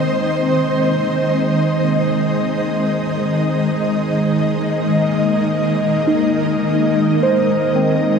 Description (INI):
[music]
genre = ambient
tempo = free time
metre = none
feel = none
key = unclear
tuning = A4 = 440 Hz
[part]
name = ethereal airy pad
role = sustained chords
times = 0.0-8.2 s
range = Eb3 to Eb5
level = -15 LUFS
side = equal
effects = ensemble chorus, built-in reverb, tremolo
[part]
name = muted felt-like synth keys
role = arpeggios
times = 0.0-8.2 s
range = Bb3 to C5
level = -22 LUFS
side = right 1 dB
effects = chorus, ping-pong delay
[sound]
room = wet huge ambient reverb, RT60 7.9 s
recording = dreamy mix soaked in reverb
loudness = -15 LUFS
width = side -6 dB against mid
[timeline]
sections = 0.0-8.2 A section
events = none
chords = 0.0 Ab/Eb